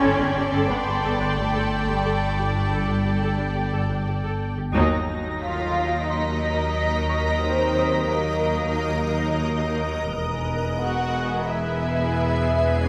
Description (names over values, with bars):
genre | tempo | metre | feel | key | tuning
cinematic, suspense film score | 89 BPM | 4/4 | straight | unclear | A4 = 440 Hz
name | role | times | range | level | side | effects
muted symphonic violin section | melody | 0.0-12.9 s | Bb4 to G5 | -32 LUFS | equal | none
muted studio violin section | second line | 0.0-12.9 s | Bb3 to D5 | -33 LUFS | equal | none
muted symphonic viola section | accompaniment | 0.0-12.9 s | Gb3 to A4 | -33 LUFS | equal | none
shimmering ambient pad | sustained chords | 0.0-12.9 s | G#4 to G#5 | -32 LUFS | equal | chorus, built-in reverb
muted symphonic cello section | bass | 0.0-12.9 s | Eb2 to Db4 | -32 LUFS | equal | none
muted symphonic double bass section | bass | 0.0-12.9 s | E1 to Eb2 | -32 LUFS | equal | none
analog drone | drone | 0.0-12.9 s | G1 to E2 | -30 LUFS | equal | chorus
bright concert grand piano | texture | 0.0-10.2 s | A4 to Eb6 | -42 LUFS | equal | none
muted symphonic violin section | texture | 0.0-12.9 s | G#5 to Cb7 | -36 LUFS | equal | none
room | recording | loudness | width
moderate concert hall reverb, RT60 2.2 s | none | -24 LUFS | mono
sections
0.0-4.7 A section; 4.7-12.9 B section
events
band accent 4.7-5.4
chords
0.0 Gsus2; 4.7 Ebm; 10.1 E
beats
0.02 0.69 1.37 | 2.04 2.72 3.39 4.07 | 4.74 5.41 6.09 6.76 | 7.43 8.11 8.78 9.46 | 10.13 10.81 11.48 12.15 | 12.83